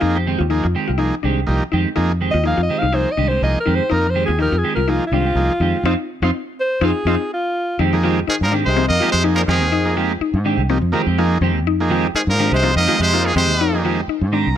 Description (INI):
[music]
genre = afrobeat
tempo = 124 BPM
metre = 4/4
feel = swing 55% on 16ths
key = F dorian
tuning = A4 = 440 Hz
[part]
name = warm alto saxophone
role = melody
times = 0.0-7.8 s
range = F4 to F5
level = -20 LUFS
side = equal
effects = none
[part]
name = combo organ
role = accompaniment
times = 0.0-14.6 s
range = F3 to Bb5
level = -23 LUFS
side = right 2 dB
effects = none
[part]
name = mallet-like synth pluck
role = arpeggios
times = 0.0-14.5 s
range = C4 to F4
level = -23 LUFS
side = left 8 dB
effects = chorus
[part]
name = fingered electric bass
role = bass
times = 0.0-14.6 s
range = C2 to Ab2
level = -19 LUFS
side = equal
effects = none
[part]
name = clean electric guitar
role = stabs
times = 0.2-14.5 s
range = Eb3 to G4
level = -24 LUFS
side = right 6 dB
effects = wide subtle chorus
[part]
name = brilliant trumpet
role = melody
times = 8.3-13.8 s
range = Ab4 to Eb5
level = -20 LUFS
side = equal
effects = tape echo
[part]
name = growling tenor saxophone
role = second line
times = 8.3-13.8 s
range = Eb3 to Bb3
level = -26 LUFS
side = right 4 dB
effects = none
[part]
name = muted trombone section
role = second line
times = 8.3-13.8 s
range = Ab2 to Eb3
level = -27 LUFS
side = left 3 dB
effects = tape echo
[sound]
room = light reverb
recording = none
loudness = -15 LUFS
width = side -10 dB against mid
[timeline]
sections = 0.0-7.8 A section; 7.8-14.6 B section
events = alto saxophone solo 0.0-7.8; band accent 5.8-7.8; transistor combo organ fill 14.1-14.6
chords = 0.0 Fm9